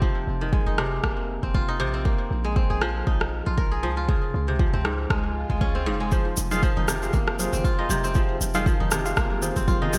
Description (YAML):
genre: afro house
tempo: 118 BPM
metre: 4/4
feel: swing 55% on 16ths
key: F minor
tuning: A4 = 439 Hz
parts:
  - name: kora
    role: arpeggios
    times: 0.0-10.0 s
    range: Ab2 to Bb4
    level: -30 LUFS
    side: equal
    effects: sidechain pumping, delay
  - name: warm 808-style bass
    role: bass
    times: 0.0-10.0 s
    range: F1 to Db2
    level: -32 LUFS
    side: equal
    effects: sidechain pumping
  - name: electronic kick drum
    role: drums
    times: 0.0-9.8 s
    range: none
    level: -26 LUFS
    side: equal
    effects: none
  - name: electronic rim click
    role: drums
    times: 0.8-9.3 s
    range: none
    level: -32 LUFS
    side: equal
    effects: gated reverb
  - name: swell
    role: sound effects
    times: 5.3-6.1 s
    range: none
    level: -41 LUFS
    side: equal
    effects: none
  - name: overdriven tine electric piano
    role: stabs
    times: 6.1-9.9 s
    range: F4 to F5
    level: -32 LUFS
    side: equal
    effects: fast tremolo, sidechain pumping, delay
  - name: tube shaker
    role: percussion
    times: 6.1-10.0 s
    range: none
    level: -35 LUFS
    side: equal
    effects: none
  - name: congas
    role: percussion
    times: 6.4-10.0 s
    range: none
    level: -35 LUFS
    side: equal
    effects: none
room: light reverb, small room ambience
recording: bright 1980s-style digital production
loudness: -24 LUFS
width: mono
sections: 0.0-10.0 A section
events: swell 5.3-6.1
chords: 0.0 Fm; 2.1 Bbsus2; 4.1 Db; 6.1 Fm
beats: | 0.02 0.53 1.03 1.54 | 2.05 2.56 3.07 3.58 | 4.09 4.59 5.10 5.61 | 6.12 6.63 7.14 7.64 | 8.15 8.66 9.17 9.68